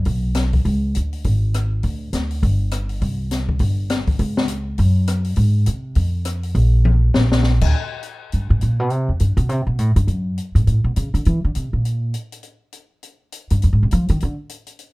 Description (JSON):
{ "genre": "jazz piano trio", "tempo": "204 BPM", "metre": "4/4", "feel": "swing 60% on 8ths", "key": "unclear", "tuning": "A4 = 440 Hz", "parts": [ { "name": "upright bass", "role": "bass", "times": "0.0-14.3 s", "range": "G1 to F3", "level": "-17 LUFS", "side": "equal", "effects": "none" }, { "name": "open jazz drum kit", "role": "drums", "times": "0.1-14.9 s", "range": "crash cymbal, hi-hat, kick drum, rim click, snare drum, toms", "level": "-24 LUFS", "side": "left 2 dB", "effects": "none" } ], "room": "little or no reverb", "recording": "dark, warm production", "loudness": "-17 LUFS", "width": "side -22 dB against mid", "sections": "0.0-7.7 A section; 7.7-14.9 B section", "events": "drum fill 6.9-7.4; upright bass solo 7.7-14.9", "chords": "none", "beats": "0.07 0.37 | 0.66 0.96 1.25 1.55 | 1.84 2.14 2.43 2.73 | 3.02 3.32 3.61 3.91 | 4.20 4.50 4.79 5.08 | 5.38 5.67 5.97 6.26 | 6.56 6.85 7.15 7.44 | 7.74 8.03 8.32 8.62 | 8.91 9.21 9.50 9.80 | 10.09 10.39 10.68 10.98 | 11.27 11.57 11.86 12.15 | 12.45 12.74 13.04 13.33 | 13.63 13.92 14.22 14.51 | 14.80" }